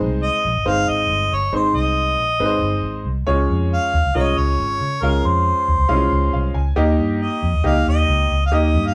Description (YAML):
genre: uptempo 1960s-style soul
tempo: 137 BPM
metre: 4/4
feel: straight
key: Ab major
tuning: A4 = 439 Hz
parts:
  - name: bright grand piano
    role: accompaniment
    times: 0.0-8.9 s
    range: Ab3 to Ab5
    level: -24 LUFS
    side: equal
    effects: none
  - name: vintage muted fingered electric bass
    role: bass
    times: 0.0-8.9 s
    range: G1 to Db3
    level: -22 LUFS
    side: equal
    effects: none
  - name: mellow harmonica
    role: melody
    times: 0.2-8.9 s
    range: Bb4 to F5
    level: -22 LUFS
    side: equal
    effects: none
room: wet studio reverb, RT60 0.6 s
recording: band playing live in one room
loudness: -19 LUFS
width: mono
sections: 0.0-8.9 A section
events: grand piano fill 6.1-6.8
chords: 0.0 Ab; 3.3 Db; 6.8 Eb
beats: 0.22 0.66 1.09 | 1.53 1.97 2.40 2.84 | 3.28 3.71 4.15 4.59 | 5.03 5.46 5.90 6.34 | 6.77 7.21 7.65 8.09 | 8.52